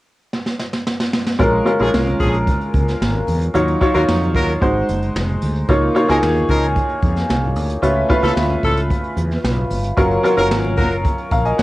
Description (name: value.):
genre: polished 1980s jazz-funk pop.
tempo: 112 BPM.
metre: 4/4.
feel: straight.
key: Bb minor.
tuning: A4 = 440 Hz.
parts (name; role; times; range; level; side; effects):
jazz brush drum kit; drums; 0.3-11.6 s; hi-hat, kick drum, snare drum; -21 LUFS; equal; none.
bright baby grand piano; accompaniment; 1.4-11.6 s; Gb3 to Bb5; -17 LUFS; equal; lush chorus, cassette tape.
mellow fretless electric bass; bass; 1.4-11.6 s; F1 to F2; -20 LUFS; equal; none.
congas; percussion; 1.4-11.6 s; none; -30 LUFS; right 1 dB; none.
clear horn section; second line; 1.8-10.9 s; F3 to Bb4; -22 LUFS; equal; cassette tape.
room: light reverb.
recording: home recording on cassette.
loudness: -15 LUFS.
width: side -18 dB against mid.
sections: 0.0-1.4 A section; 1.4-11.6 B section.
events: drum fill 0.3-1.4.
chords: 0.0 N.C.; 1.4 Bbm7; 3.5 Ebm9; 4.6 Ab7; 5.7 Db69; 7.8 Db7b13; 10.0 Gbmaj7.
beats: 0.33 0.86 | 1.40 1.93 2.47 3.01 | 3.54 4.08 4.61 5.15 | 5.69 6.22 6.76 7.29 | 7.83 8.37 8.90 9.44 | 9.97 10.51 11.05 11.58.